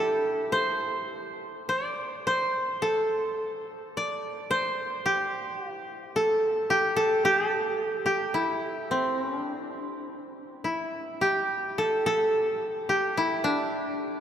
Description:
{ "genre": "japanese traditional", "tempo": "54 BPM", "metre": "2/4", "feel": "rubato", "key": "D suspended pentatonic", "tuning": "A4 = 439 Hz", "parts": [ { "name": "koto", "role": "solo", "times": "0.0-14.2 s", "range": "D4 to D5", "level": "-25 LUFS", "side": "equal", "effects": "none" } ], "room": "wet cathedral reverb, RT60 5.3 s", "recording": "in a vast, echoing space", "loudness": "-25 LUFS", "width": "side -9 dB against mid", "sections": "0.0-11.2 A section; 11.2-14.2 B section", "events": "none", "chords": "none", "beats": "1.10 | 2.25 3.38 | 4.48 5.58 | 6.67 7.76 | 8.87 10.03 | 11.19 12.32 | 13.43" }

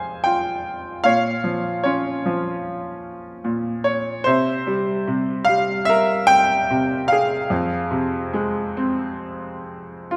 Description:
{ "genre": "classical, lyrical solo piano", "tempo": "74 BPM", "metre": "4/4", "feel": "rubato", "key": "F harmonic minor", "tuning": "A4 = 440 Hz", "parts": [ { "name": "bright grand piano", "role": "solo", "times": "0.0-10.2 s", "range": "F2 to Ab5", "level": "-22 LUFS", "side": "equal", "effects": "none" } ], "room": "moderate concert hall reverb, RT60 2.1 s", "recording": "faint mains hum", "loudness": "-21 LUFS", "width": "mono", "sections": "0.0-10.2 A section", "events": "none", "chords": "0.0 Fm; 1.0 Bbm; 4.3 C7; 7.5 Fm", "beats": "0.24 | 1.05 1.85 2.65 3.44 | 4.26 5.08 5.89 6.70 | 7.51 8.35 9.21 10.12" }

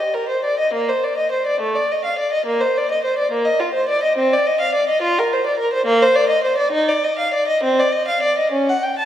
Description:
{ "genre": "classical, baroque-style suite movement for unaccompanied violin", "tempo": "70 BPM (dotted quarters)", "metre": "6/8", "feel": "uneven beats, rubato", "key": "unclear", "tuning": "A4 = 440 Hz", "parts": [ { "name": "rich violin", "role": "solo", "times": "0.0-9.1 s", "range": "A3 to A5", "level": "-16 LUFS", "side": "equal", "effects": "none" } ], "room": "wet scoring stage reverb, RT60 1.9 s", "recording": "recorded in a church or concert hall", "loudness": "-16 LUFS", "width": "side -11 dB against mid", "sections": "0.0-9.1 A section", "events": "none", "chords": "none", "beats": "| 0.75 1.62 | 2.47 3.32 | 4.19 5.04 | 5.89 6.74 | 7.63 8.53" }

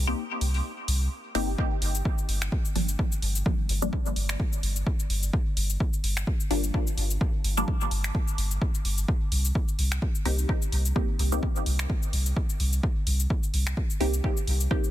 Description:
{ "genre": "dub techno", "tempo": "128 BPM", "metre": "4/4", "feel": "swing 56% on 16ths", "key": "G minor", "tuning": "A4 = 441 Hz", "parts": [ { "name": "pure sine sub bass", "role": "bass", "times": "0.0-14.7 s", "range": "G1 to C2", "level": "-26 LUFS", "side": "equal", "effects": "sidechain pumping" }, { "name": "filtered dub chord stab", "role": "stabs", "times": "0.1-14.9 s", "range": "F3 to G4", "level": "-32 LUFS", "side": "left 1 dB", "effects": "phaser, sidechain pumping, dub echo" }, { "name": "deep house drum kit", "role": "drums", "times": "0.4-14.9 s", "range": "cabasa, finger snaps, hi-hat", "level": "-32 LUFS", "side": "left 1 dB", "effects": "overdrive, soft clipping on snare" }, { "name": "electronic kick drum", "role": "drums", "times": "1.6-14.8 s", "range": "none", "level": "-27 LUFS", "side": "equal", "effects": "overdrive" } ], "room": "digital ambience", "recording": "dense, heavily limited modern master", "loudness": "-24 LUFS", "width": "side -14 dB against mid", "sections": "0.0-14.9 A section", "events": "break 0.0-1.6", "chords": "0.0 Cm7; 1.6 Gm7; 9.1 Cm7", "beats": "0.18 0.65 1.11 | 1.58 2.05 2.52 2.99 | 3.46 3.93 4.40 4.87 | 5.33 5.80 6.27 6.74 | 7.21 7.68 8.15 8.62 | 9.08 9.55 10.02 10.49 | 10.96 11.43 11.90 12.37 | 12.83 13.30 13.77 14.24 | 14.71" }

